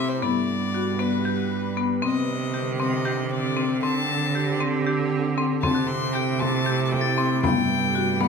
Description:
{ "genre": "contemporary instrumental, chamber music in an uneven meter", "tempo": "233 BPM (eighths)", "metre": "7/8", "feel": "straight", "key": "G major", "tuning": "A4 = 440 Hz", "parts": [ { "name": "bright violin", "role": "melody", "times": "0.0-8.3 s", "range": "B4 to C6", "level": "-29 LUFS", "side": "left 6 dB", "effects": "none" }, { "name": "evolving wavetable pad", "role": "sustained chords", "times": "0.0-8.3 s", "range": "C3 to F#5", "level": "-30 LUFS", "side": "right 3 dB", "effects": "phaser, built-in reverb" }, { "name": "marimba with hard mallets", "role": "arpeggios", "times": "0.0-8.3 s", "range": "B3 to G4", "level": "-26 LUFS", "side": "left 5 dB", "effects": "none" }, { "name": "clear cello", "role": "bass", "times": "0.0-8.3 s", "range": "G2 to D3", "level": "-27 LUFS", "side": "right 7 dB", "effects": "none" }, { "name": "frame drum", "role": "percussion", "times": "5.6-8.3 s", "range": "none", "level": "-30 LUFS", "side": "left 2 dB", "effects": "none" }, { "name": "glockenspiel with hard plastic mallets", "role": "texture", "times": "5.7-7.6 s", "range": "F#6 to A6", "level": "-34 LUFS", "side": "left 4 dB", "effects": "none" } ], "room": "wet recital hall reverb, RT60 1.5 s", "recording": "minimal, uncompressed stereo recording", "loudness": "-21 LUFS", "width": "side -5 dB against mid", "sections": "0.0-8.3 A section", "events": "none", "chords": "0.2 Gmaj7; 2.0 Cmadd9; 3.8 D7sus4; 5.6 C6; 7.4 Gmaj7" }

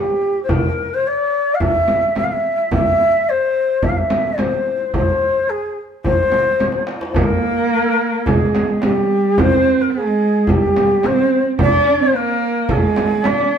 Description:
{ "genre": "Persian modal ensemble", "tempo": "108 BPM", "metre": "4/4", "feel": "straight", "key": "C dastgah homayun", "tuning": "A4 = 445 Hz", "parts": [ { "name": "breathy ney", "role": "melody", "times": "0.0-13.6 s", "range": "G4 to F5", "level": "-17 LUFS", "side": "left 1 dB", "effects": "none" }, { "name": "tombak", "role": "percussion", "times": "0.2-13.5 s", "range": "none", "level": "-23 LUFS", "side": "equal", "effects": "none" }, { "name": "frame drum", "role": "percussion", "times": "0.5-13.4 s", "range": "none", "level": "-21 LUFS", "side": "right 1 dB", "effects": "none" }, { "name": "dark cello", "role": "second line", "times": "7.2-13.6 s", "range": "G3 to Db4+47c", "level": "-18 LUFS", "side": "right 4 dB", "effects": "none" } ], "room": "wet stone room reverb, RT60 1.2 s", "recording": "band playing live in one room", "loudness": "-14 LUFS", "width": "side -7 dB against mid", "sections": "0.0-7.2 A section; 7.2-13.6 B section", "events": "drum fill 6.6-7.2", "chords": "none" }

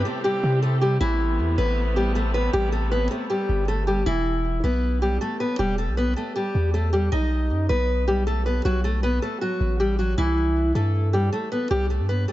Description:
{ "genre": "hip hop, trap", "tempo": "157 BPM", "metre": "4/4", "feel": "half-time", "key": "E harmonic minor", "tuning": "A4 = 440 Hz", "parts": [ { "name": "dark chamber string section", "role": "sustained chords", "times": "0.0-4.0 s", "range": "C3 to G4", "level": "-32 LUFS", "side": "equal", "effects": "none" }, { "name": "long sustained 808-style bass", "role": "bass", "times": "0.0-12.3 s", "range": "E1 to C3", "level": "-23 LUFS", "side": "equal", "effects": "none" }, { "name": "fingerpicked steel-string acoustic guitar", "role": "melody", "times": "0.1-12.3 s", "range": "E3 to D#5", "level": "-24 LUFS", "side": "equal", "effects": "digital delay" } ], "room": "light reverb, studio ambience", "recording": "nothing above 7.8 kHz", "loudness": "-20 LUFS", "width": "side -15 dB against mid", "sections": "0.0-4.1 A section; 4.1-12.3 B section", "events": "none", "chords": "0.0 C; 1.0 Amadd9; 4.1 Em; 7.1 B; 10.2 C" }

